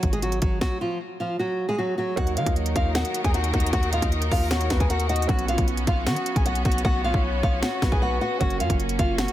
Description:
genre	hip hop, trap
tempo	154 BPM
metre	4/4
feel	half-time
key	Eb minor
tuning	A4 = 438 Hz
part	nylon-string guitar	melody	0.0-9.3 s	F3 to Ab5	-26 LUFS	equal	ping-pong delay
part	hard-hitting 808-style bass	bass	0.0-9.3 s	Gb1 to Eb3	-26 LUFS	equal	none
part	trap drum kit	drums	0.0-9.3 s	hi-hat, kick drum, snare drum	-25 LUFS	equal	none
part	felt-muted upright piano	accompaniment	2.2-9.3 s	Gb3 to Gb4	-34 LUFS	right 6 dB	none
part	clear symphonic string section	sustained chords	2.2-9.3 s	Eb3 to Bb4	-32 LUFS	equal	none
part	soft octave-layered synth lead	second line	3.9-8.4 s	Bb4 to Eb5	-34 LUFS	left 4 dB	chorus, ping-pong delay
room	light reverb, small room ambience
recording	dense, heavily limited modern master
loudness	-21 LUFS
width	side -13 dB against mid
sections	0.0-2.2 A section; 2.2-9.3 B section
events	stop 0.6-2.2; hi-hats muted 6.8-8.4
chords	0.0 Gbsus2/Ab; 2.2 Ebm; 5.3 Bsus2; 8.4 Gb

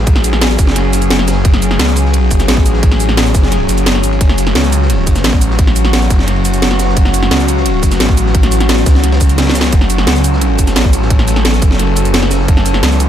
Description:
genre	dark technical drum and bass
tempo	174 BPM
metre	4/4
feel	straight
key	F# minor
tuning	A4 = 440 Hz
part	metallic inharmonic drone	sustained chords	0.0-13.1 s	F#3 to A4	-16 LUFS	left 2 dB	chorus, built-in reverb, sidechain pumping
part	snarling distorted saw bass	bass	0.0-13.1 s	F#1 to C#2	-13 LUFS	equal	distortion
part	crunchy breakbeat drum kit	drums	0.1-13.1 s	ride cymbal, snare drum	-27 LUFS	equal	high-pass filter on cymbals, high-pass filter on snare, high-pass filter on room
part	drum and bass drum kit	drums	0.1-13.1 s	cabasa, hi-hat, snare drum	-16 LUFS	equal	overdrive
part	electronic kick drum	drums	0.1-12.6 s	none	-11 LUFS	equal	overdrive
room	digital ambience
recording	none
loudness	-9 LUFS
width	side -10 dB against mid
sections	0.0-13.1 A section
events	drum fill 9.4-9.7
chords	0.0 F#madd9

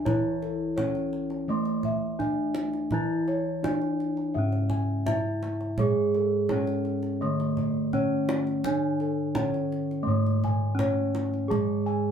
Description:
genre	Javanese gamelan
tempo	84 BPM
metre	4/4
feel	straight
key	C# pelog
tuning	A4 = 440 Hz
part	gamelan-type bronze metallophone	melody	0.0-12.1 s	A3 to G#4	-29 LUFS	equal	none
part	gamelan-type bronze metallophone	accompaniment	0.0-12.1 s	C#3 to A3	-33 LUFS	right 2 dB	none
part	gamelan-type bossed gongs	bass	0.0-12.1 s	G#2 to G#4	-31 LUFS	equal	none
part	gamelan-type bossed gongs	arpeggios	0.1-12.1 s	A4 to A5	-33 LUFS	left 1 dB	none
part	kendang	percussion	0.1-11.7 s	none	-34 LUFS	right 2 dB	none
room	moderate studio ambience, RT60 0.5 s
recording	band playing live in one room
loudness	-25 LUFS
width	side -8 dB against mid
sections	0.0-12.1 A section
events	none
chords	none

